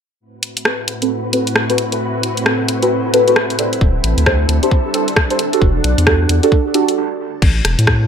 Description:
UK garage, two-step garage; 133 BPM; 4/4; swing 62% on 16ths; A dorian; A4 = 441 Hz
soft string machine; sustained chords; 0.5-8.1 s; A2 to F#5; -23 LUFS; equal; ensemble chorus, sidechain pumping
granular cloud pad; texture; 1.8-8.1 s; A2 to F#5; -26 LUFS; equal; built-in reverb, sidechain pumping
garage drum kit; drums; 0.4-8.0 s; crash cymbal, hi-hat, rim click; -18 LUFS; equal
deep mellow chord stab; stabs; 0.7-8.0 s; C4 to C5; -17 LUFS; right 1 dB; chorus, phaser, tape echo
saturated sub bass; bass; 3.8-8.1 s; D1 to A2; -15 LUFS; equal; tube saturation
electronic kick drum; drums; 3.8-8.0 s; -15 LUFS; equal
moderate plate reverb, RT60 1.0 s; dreamy mix soaked in reverb; -13 LUFS; side -7 dB against mid
0.2-7.4 A section
fade-in on ambient pad 0.2-7.4; filter sweep on synth stab 0.2-7.4; stop 7.0-7.4
0.2 Am69; 3.6 D7sus4; 5.4 Em11; 7.4 Am69

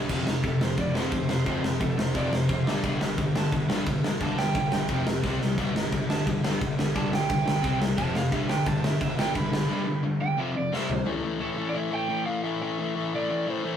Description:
punk rock; 175 BPM; 4/4; straight; A minor; A4 = 441 Hz
distorted electric guitar; riff; 0.0-11.1 s; F2 to C4; -32 LUFS; right 3 dB; distortion
sludgy distorted guitar; riff; 0.0-13.8 s; F2 to C4; -28 LUFS; left 3 dB; overdrive
fuzz picked electric bass; bass; 0.0-9.7 s; F1 to C2; -35 LUFS; equal; overdrive
big rock drum kit; drums; 0.1-11.0 s; crash cymbal, kick drum, snare drum, toms; -28 LUFS; equal
overdriven electric guitar; melody; 0.4-13.7 s; A4 to B5; -32 LUFS; right 5 dB
moderate studio reverb, RT60 0.5 s; rough rehearsal-room recording, warm saturation; -24 LUFS; side -9 dB against mid
0.1-11.1 A section; 11.1-13.8 B section
overdriven electric guitar solo 0.1-11.1; drum fill 5.2-5.6, 10.7-11.1
0.1 F5; 2.7 G5; 4.9 F5; 5.2 C5; 5.6 G5; 7.6 C5; 8.0 F5; 8.3 G; 10.4 F5; 10.7 C5; 11.1 A5

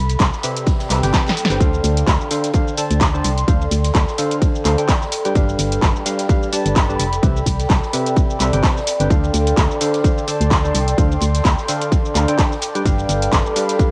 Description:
piano house; 128 BPM; 4/4; swing 56% on 16ths; D dorian; A4 = 439 Hz
organ-like FM bass; bass; 0.0-13.4 s; F1 to D2; -22 LUFS; equal; sidechain pumping
warbly tape-like pad; texture; 0.0-13.9 s; A4 to C6; -27 LUFS; equal; chorus, built-in reverb, sidechain pumping, cassette tape
open jazz drum kit; drums; 0.1-13.9 s; ride cymbal, snare drum; -41 LUFS; equal
punchy analog drum machine; drums; 0.1-13.9 s; handclaps, hi-hat, shaker, snare drum; -24 LUFS; equal; cassette tape
electronic kick drum; drums; 0.2-13.9 s; -19 LUFS; equal; cassette tape
percussive organ stab; riff; 0.4-13.9 s; C3 to A5; -26 LUFS; equal; subtle chorus, cassette tape, sidechain pumping
moderate spring reverb, RT60 1.9 s; home recording on cassette; -17 LUFS; mono
0.0-13.9 A section
drum fill 1.1-1.6
0.0 Cmaj7; 1.6 Dm7; 5.1 G7; 7.2 Cmaj7; 9.1 Dm7; 12.6 G7

